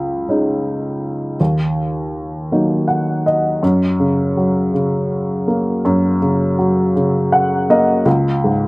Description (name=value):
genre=folk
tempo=54 BPM (dotted quarters)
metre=6/8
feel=straight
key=F# major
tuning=A4 = 440 Hz
part: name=dark upright piano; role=solo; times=0.0-8.7 s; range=C#2 to F#5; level=-14 LUFS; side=equal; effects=slapback echo
room=light reverb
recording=recorded outdoors, with no room sound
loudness=-14 LUFS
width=side -24 dB against mid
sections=0.0-3.6 A section; 3.6-8.7 B section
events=none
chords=0.0 C#sus2; 1.4 D#m; 3.6 F#; 8.1 C#5